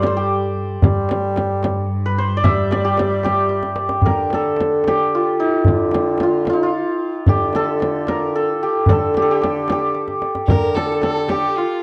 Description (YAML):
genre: Persian modal ensemble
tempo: 75 BPM (dotted quarters)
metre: 6/8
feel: straight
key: unclear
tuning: A4 = 440 Hz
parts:
  - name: santur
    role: melody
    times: 0.0-11.8 s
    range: Eb4+45c to E5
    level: -21 LUFS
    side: equal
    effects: none
  - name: mellow bassoon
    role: bass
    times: 0.0-11.6 s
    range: D3 to G3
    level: -25 LUFS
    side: equal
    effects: none
  - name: warm cello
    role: drone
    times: 0.0-4.1 s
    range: G2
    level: -26 LUFS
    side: equal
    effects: none
  - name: frame drum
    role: percussion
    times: 0.0-11.4 s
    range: none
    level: -25 LUFS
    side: equal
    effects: none
  - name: tombak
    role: percussion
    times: 0.0-11.4 s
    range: none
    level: -22 LUFS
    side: equal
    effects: none
  - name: warm violin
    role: second line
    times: 10.5-11.8 s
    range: F4 to Bb4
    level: -27 LUFS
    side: equal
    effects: tape echo
room: light reverb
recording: dry, close 1970s-style studio recording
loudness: -18 LUFS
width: mono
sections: 0.0-4.1 A section; 4.1-11.8 B section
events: drum fill 3.5-4.1, 10.0-10.5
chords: none